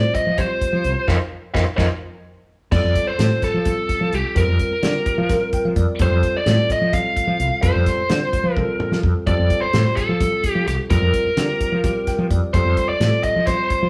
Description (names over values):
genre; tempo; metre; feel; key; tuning
electric jazz fusion; 257 BPM (eighths); 7/8; straight; F mixolydian; A4 = 440 Hz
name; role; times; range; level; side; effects
biting lead guitar; melody; 0.0-13.9 s; G4 to F5; -24 LUFS; equal; overdrive
bell-like tine electric piano; accompaniment; 0.0-13.9 s; G3 to G5; -29 LUFS; equal; none
mellow fretless electric bass; bass; 0.1-13.9 s; C2 to F3; -23 LUFS; equal; none
damped 70s drum kit; drums; 0.1-13.8 s; crash cymbal, hi-hat, kick drum, snare drum, toms; -26 LUFS; equal; none
room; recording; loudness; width
moderate stone room reverb, RT60 1.2 s; band playing live in one room, studio ambience, faint mains hum; -19 LUFS; mono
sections
0.0-2.7 A section; 2.7-13.9 A section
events
band accent 1.1-2.7; drum fill 2.0-2.7, 8.6-9.3; tine electric piano fill 2.0-2.7, 5.3-6.0, 11.8-12.5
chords
0.0 Fsus2; 1.1 F7sus4; 2.7 Fadd9; 4.4 Bb69/F; 6.0 Fadd9; 10.9 Bb69/F; 12.5 Fadd9